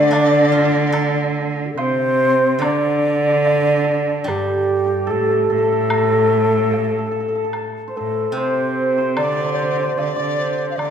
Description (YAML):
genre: chinese traditional, Chinese chamber ensemble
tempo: 73 BPM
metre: 4/4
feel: rubato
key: D yu mode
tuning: A4 = 440 Hz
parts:
  - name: xiao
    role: melody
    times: 0.0-10.9 s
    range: F4 to D5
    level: -19 LUFS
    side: left 2 dB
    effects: none
  - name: hammered dulcimer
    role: second line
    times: 0.0-10.9 s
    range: G4 to A5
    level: -25 LUFS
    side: right 4 dB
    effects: none
  - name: hollow large dizi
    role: second line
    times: 0.0-1.8, 9.2-10.9 s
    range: D5 to F5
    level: -25 LUFS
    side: left 5 dB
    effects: none
  - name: rich cello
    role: second line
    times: 0.0-10.9 s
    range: G2 to D3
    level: -21 LUFS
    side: right 4 dB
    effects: none
  - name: steel-string zither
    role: accompaniment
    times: 0.0-10.8 s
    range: C3 to A4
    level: -25 LUFS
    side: equal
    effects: none
  - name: woodblock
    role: percussion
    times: 0.1-10.9 s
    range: none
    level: -29 LUFS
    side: left 3 dB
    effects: none
room: wet recital hall reverb, RT60 1.7 s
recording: none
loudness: -16 LUFS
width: side -8 dB against mid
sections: 0.0-2.6 A section; 2.6-10.9 B section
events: none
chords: none